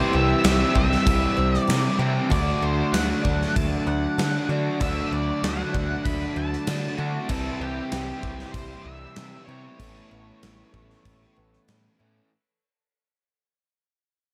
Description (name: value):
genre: rock, shoegaze and dream pop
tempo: 96 BPM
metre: 4/4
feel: straight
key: D mixolydian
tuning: A4 = 438 Hz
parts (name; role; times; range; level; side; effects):
- octave-fuzz lead guitar; melody; 0.0-11.6 s; G4 to B5; -33 LUFS; equal; distortion, analog delay
- analog string pad; sustained chords; 0.0-12.3 s; F#4 to E6; -40 LUFS; equal; none
- picked twelve-string acoustic guitar; arpeggios; 0.0-12.3 s; E3 to A4; -38 LUFS; equal; none
- crunchy overdriven guitar; riff; 0.0-12.3 s; A2 to G4; -30 LUFS; equal; lush chorus
- direct-recorded clean electric guitar; riff; 0.0-12.3 s; C3 to D5; -34 LUFS; equal; reverse reverb
- growling picked electric bass; bass; 0.1-12.2 s; A1 to D3; -30 LUFS; equal; overdrive
- gated 80s drum kit; drums; 0.4-11.8 s; crash cymbal, kick drum, snare drum; -30 LUFS; equal; none
room: moderate small room reverb, RT60 0.5 s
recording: none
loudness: -24 LUFS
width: mono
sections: 0.0-12.3 A section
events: fade-out 0.3-12.3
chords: 0.0 C; 2.3 D; 7.3 C; 9.8 Aadd9